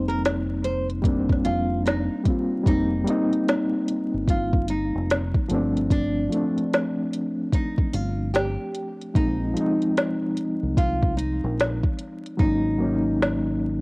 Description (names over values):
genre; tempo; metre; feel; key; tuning
lo-fi hip hop; 74 BPM; 4/4; swing 63% on 16ths; F dorian; A4 = 440 Hz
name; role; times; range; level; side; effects
nylon-string guitar; melody; 0.0-13.8 s; D4 to C5; -30 LUFS; right 1 dB; cassette tape, analog delay
reed electric piano; accompaniment; 0.0-13.8 s; F3 to F4; -24 LUFS; equal; overdrive, fast tremolo, cassette tape
deep dub fingered electric bass; bass; 0.0-13.8 s; F1 to C2; -28 LUFS; equal; none
organic electronic drum kit; drums; 0.1-13.4 s; hi-hat, kick drum, snare drum; -23 LUFS; equal; overdrive, cassette tape
room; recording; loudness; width
light reverb; home recording on cassette, vinyl crackle; -21 LUFS; side -29 dB against mid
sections
0.0-2.7 A section; 2.7-13.8 B section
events
hi-hats muted 12.4-13.8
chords
0.0 F9sus4; 5.5 G9sus4; 9.1 Bb9sus4; 12.4 Ab9sus4